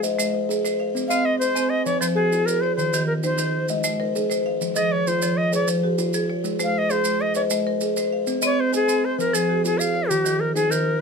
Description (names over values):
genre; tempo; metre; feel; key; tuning
southern african traditional, mbira-style interlocking cycle; 131 BPM (dotted quarters); 12/8; straight; F equiheptatonic; A4 = 436 Hz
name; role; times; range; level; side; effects
buzzing kalimba; arpeggios; 0.0-11.0 s; Eb3+29c to Ab5+43c; -24 LUFS; left 3 dB; slapback echo
marimba with hard mallets; arpeggios; 0.0-11.0 s; Eb3+29c to Ab5+43c; -26 LUFS; right 4 dB; none
maracas; percussion; 0.0-10.9 s; none; -30 LUFS; right 6 dB; none
bright reedy Native American-style cedar flute; melody; 1.1-11.0 s; G4-36c to F5; -22 LUFS; left 1 dB; none
room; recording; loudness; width
moderate studio reverb, RT60 0.6 s; none; -20 LUFS; side -5 dB against mid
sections
0.0-11.0 A section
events
none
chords
0.0 Ab; 0.9 Cm; 1.9 Fm; 2.8 Eb; 3.7 Ab; 4.6 Fm; 6.4 Ab; 8.3 Cm; 9.2 Fm; 10.1 Eb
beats
0.02 0.48 | 0.94 1.40 1.86 2.32 | 2.78 3.24 3.69 4.15 | 4.61 5.07 5.53 5.98 | 6.44 6.90 7.36 7.82 | 8.27 8.73 9.19 9.65 | 10.10 10.56